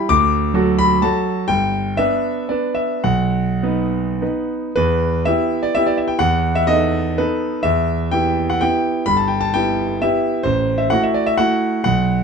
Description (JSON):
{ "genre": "classical, romantic triple-time dance for piano with dotted rhythms", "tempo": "97-141 BPM", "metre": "3/4", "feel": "rubato", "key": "E minor", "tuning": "A4 = 440 Hz", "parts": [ { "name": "clear concert grand piano", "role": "solo", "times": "0.0-12.2 s", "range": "G1 to D6", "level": "-16 LUFS", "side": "equal", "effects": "none" } ], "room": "moderate stone room reverb, RT60 1.3 s", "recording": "dark, warm production", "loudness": "-16 LUFS", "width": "side -6 dB against mid", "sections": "0.0-4.7 A section; 4.7-12.2 B section", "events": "none", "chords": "0.1 D; 1.5 G; 3.0 B; 4.7 Em; 6.2 B7/E; 7.6 Em; 9.1 Em/G; 10.4 Am6" }